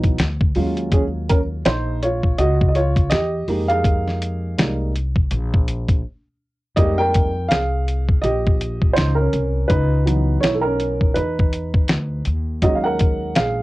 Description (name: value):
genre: hip hop, jazz-hop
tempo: 82 BPM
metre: 4/4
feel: swing 59% on 16ths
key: F phrygian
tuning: A4 = 440 Hz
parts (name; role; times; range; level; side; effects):
- dark upright piano; accompaniment; 0.0-13.6 s; Fb3 to G5; -21 LUFS; right 1 dB; cassette tape
- upright bass; bass; 0.0-13.6 s; Bb1 to F2; -22 LUFS; equal; none
- dusty soul sampler-style drum kit; drums; 0.0-13.6 s; hi-hat, kick drum, snare drum; -18 LUFS; equal; cassette tape
room: light reverb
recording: home recording on cassette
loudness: -17 LUFS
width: side -19 dB against mid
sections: 0.0-6.8 A section; 6.8-13.6 B section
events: upright piano solo 0.0-6.8, 6.8-13.6; break 6.0-6.8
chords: 0.0 Dbm11 (rootless); 0.6 Ebm11; 3.5 Fm11; 9.7 Dbm11; 12.3 Ebm11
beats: 0.19 | 0.92 1.65 2.38 3.12 | 3.85 4.58 5.31 6.04 | 6.77 7.50 8.24 8.97 | 9.70 10.43 11.16 11.90 | 12.63 13.36